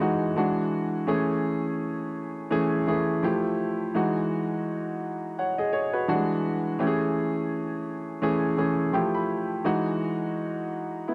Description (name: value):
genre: soul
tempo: 84 BPM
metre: 4/4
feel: swing 58% on 16ths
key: E major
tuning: A4 = 439 Hz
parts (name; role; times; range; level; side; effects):
- clear grand piano; solo; 0.0-11.1 s; E3 to B5; -27 LUFS; equal; none
room: small room ambience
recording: dry, close 1970s-style studio recording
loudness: -27 LUFS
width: mono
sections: 0.0-11.1 A section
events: grand piano fill 8.6-9.7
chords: 0.4 E9; 1.1 Amaj7; 3.2 Fmaj9; 3.9 Emaj9; 6.1 E9; 6.8 Amaj7; 8.9 Fmaj9; 9.7 Emaj9